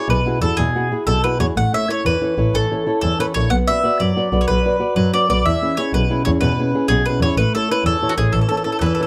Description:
italian folk, Italian serenade; 124 BPM (dotted quarters); 6/8; straight; A major; A4 = 439 Hz
mandolin; melody; 0.0-9.1 s; F#4 to F#5; -22 LUFS; equal
flamenco guitar; accompaniment; 0.0-9.1 s; B2 to D5; -23 LUFS; equal
rich double bass; bass; 0.1-8.9 s; A1 to F#2; -22 LUFS; equal
light reverb; close, detailed microphones; -18 LUFS; mono
0.0-9.1 A section
0.0 Eadd9; 1.6 A; 3.5 Bm; 5.5 E6; 7.4 A
0.09 | 0.58 1.07 | 1.56 2.05 | 2.54 3.03 | 3.52 4.00 | 4.48 4.97 | 5.46 5.94 | 6.42 6.90 | 7.38 7.86 | 8.34 8.82

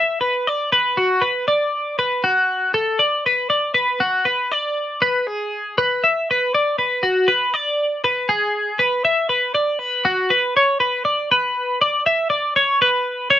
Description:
rock; 79 BPM (dotted quarters); 6/8; straight; A4 = 441 Hz
twelve-string electric guitar; solo; 0.0-13.4 s; F#4 to E5; -16 LUFS; left 1 dB; wide subtle chorus
moderate small room reverb, RT60 0.5 s; rough home demo mix; -16 LUFS; side -12 dB against mid
0.0-10.6 A section; 10.6-13.4 B section
0.72 | 1.47 2.23 | 2.99 3.75 | 4.51 5.26 | 6.02 6.78 | 7.54 8.29 | 9.05 9.80 | 10.56 11.31 | 12.06 12.82

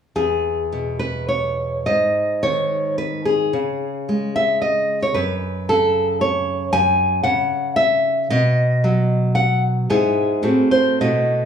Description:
romantic piece for solo classical guitar; 93-118 BPM; 3/4; rubato; E major; A4 = 440 Hz
nylon-string guitar; solo; 0.2-11.5 s; E2 to G#5; -17 LUFS; equal
moderate large studio reverb, RT60 1.1 s; band playing live in one room, small room reverb; -17 LUFS; side -8 dB against mid
0.2-11.5 A section
0.2 E; 1.9 G#5; 3.6 C#5; 5.2 F#5; 8.3 B; 9.9 E/G#; 10.4 F#dim/A
| 0.16 0.72 1.30 | 1.87 2.44 3.00 | 3.55 4.10 4.64 | 5.16 5.70 6.22 | 6.74 7.26 7.79 | 8.32 8.84 9.37 | 9.90 10.43 11.02

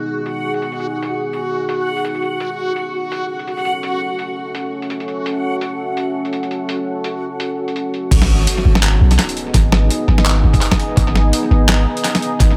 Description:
half-time drum and bass; 168 BPM; 4/4; swing 56% on 16ths, half-time; G# phrygian; A4 = 440 Hz
deep dark ambient pad; sustained chords; 0.0-12.6 s; B3 to E5; -25 LUFS; equal; chorus, built-in reverb, sidechain pumping
backwards swelling texture; texture; 0.0-8.1 s; F#4 to F#5; -26 LUFS; equal; built-in reverb
boom bap sampler-style drum kit; drums; 0.3-12.5 s; crash cymbal, handclaps, hi-hat, snare drum; -22 LUFS; equal; overdrive, low-pass filter on snare, studio reverb, low-pass filter on hats, low-pass filter on cymbals, tape echo
long sustained 808-style bass; bass; 8.1-12.6 s; G#1 to B1; -15 LUFS; equal
electronic kick drum; drums; 8.1-12.5 s; -18 LUFS; equal; overdrive, studio reverb
sub drop; sound effects; 8.1-9.5 s; -25 LUFS; equal
light reverb, digital ambience; echo-heavy mix; -18 LUFS; mono
0.0-8.1 A section; 8.1-12.6 B section
drop 8.1-12.6; impact 8.1-9.5
0.0 G#m; 2.4 F#m7; 8.1 G#m
0.26 0.62 | 0.97 1.33 1.69 2.04 | 2.40 2.76 3.12 3.47 | 3.83 4.19 4.54 4.90 | 5.26 5.62 5.97 6.33 | 6.69 7.04 7.40 7.76 | 8.12 8.47 8.83 9.19 | 9.54 9.90 10.26 10.62 | 10.97 11.33 11.69 12.04 | 12.40

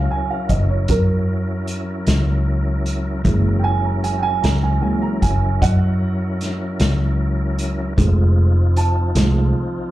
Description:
slow blues; 51 BPM (dotted quarters); 12/8; straight; A4 = 440 Hz
dark upright piano; accompaniment; 0.0-9.9 s; Eb3 to Bb5; -23 LUFS; right 3 dB; slapback echo
tonewheel organ; sustained chords; 0.0-9.9 s; F3 to Bb4; -26 LUFS; left 1 dB; chorus vibrato, fast rotary speaker
vintage muted fingered electric bass; bass; 0.0-9.5 s; F1 to Gb2; -18 LUFS; equal
vintage drum kit; drums; 0.5-9.3 s; hi-hat, kick drum, snare drum; -23 LUFS; equal
little or no reverb; live gig heard through the venue's PA, club reverb; -16 LUFS; side -15 dB against mid
0.0-9.9 A section
upright piano solo 0.0-9.9
0.0 Gb7; 8.0 F7#9
0.90 2.08 | 3.26 4.44 5.62 6.80 | 7.98 9.16

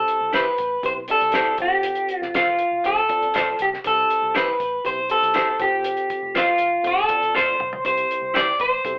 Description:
uptempo 1960s-style soul; 120 BPM; 4/4; straight; C major; A4 = 438 Hz
electric guitar through a small old amp; melody; 0.0-9.0 s; F4 to D5; -22 LUFS; equal
tine electric piano; accompaniment; 0.0-9.0 s; C3 to D5; -36 LUFS; equal; overdrive
cloth-damped thuddy drum kit; drums; 0.1-9.0 s; hi-hat, kick drum, snare drum, toms; -34 LUFS; equal
vintage muted fingered electric bass; bass; 0.2-9.0 s; E1 to C2; -50 LUFS; equal
electric guitar at the edge of break-up; stabs; 0.3-8.5 s; E4 to C5; -25 LUFS; equal; tremolo
moderate studio reverb, RT60 0.7 s; band playing live in one room, telephone sound; -21 LUFS; mono
0.0-9.0 A section
drum fill 7.3-7.8
0.0 C; 1.6 F; 3.8 C; 5.6 F; 7.8 C
0.33 0.84 1.34 | 1.84 2.34 2.85 3.35 | 3.85 4.35 4.85 5.35 | 5.85 6.35 6.85 7.35 | 7.85 8.35 8.85

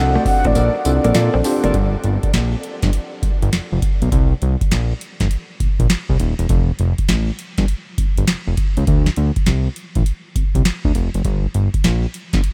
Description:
R&B, new jack swing; 101 BPM; 4/4; swing 65% on 16ths; A4 = 441 Hz
mellow horn-like synth lead; melody; 0.0-1.5 s; D5 to F#5; -26 LUFS; equal; chorus, delay
tine electric piano; accompaniment; 0.0-1.8 s; C4 to A4; -26 LUFS; equal
fat analog bass; bass; 0.0-12.4 s; Eb1 to Bb2; -20 LUFS; equal
mellow horn section; stabs; 0.1-1.7 s; D4 to D5; -30 LUFS; equal; delay
direct-recorded clean electric guitar; riff; 0.2-1.7 s; A3 to C4; -29 LUFS; equal
booming analog drum machine; drums; 0.3-12.5 s; hi-hat, kick drum, snare drum, tambourine; -21 LUFS; equal
light reverb; -18 LUFS; mono
0.0-1.7 A section; 1.7-12.5 B section
kick muted 0.6-1.7
0.0 D7; 0.6 Bbmaj7; 1.7 Gm7; 4.1 Cm7; 6.5 F; 8.9 D7(no3); 11.2 Gm
0.55 1.15 | 1.74 2.34 2.93 3.52 | 4.12 4.71 5.31 5.90 | 6.50 7.09 7.68 8.28 | 8.87 9.46 10.06 10.65 | 11.25 11.84 12.44

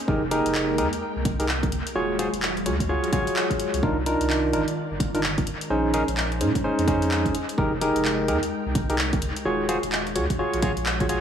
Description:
UK garage, two-step garage; 128 BPM; 4/4; swing 62% on 16ths; A4 = 441 Hz
soft string machine; sustained chords; 0.0-11.2 s; Eb3 to G5; -32 LUFS; left 1 dB; ensemble chorus, sidechain pumping
barky tine electric piano; stabs; 0.1-11.2 s; Db4 to Db5; -24 LUFS; equal; tape echo
saturated sub bass; bass; 0.1-11.2 s; Eb1 to Bb2; -29 LUFS; equal
electronic kick drum; drums; 0.1-11.1 s; -26 LUFS; equal
house drum kit; drums; 0.3-11.2 s; handclaps, hi-hat, rim click; -29 LUFS; left 1 dB; dub echo
moderate plate reverb, RT60 2.1 s; echo-heavy mix, studio reverb; -22 LUFS; side -8 dB against mid
0.0-11.2 A section
0.0 Fm11; 2.0 Ebm11; 3.8 Cm11; 5.5 Bbm11; 7.3 Fm11; 9.5 Ebm11
| 0.08 0.55 1.02 1.49 | 1.95 2.42 2.89 3.36 | 3.83 4.30 4.77 5.24 | 5.70 6.17 6.64 7.11 | 7.58 8.05 8.52 8.99 | 9.45 9.92 10.39 10.86

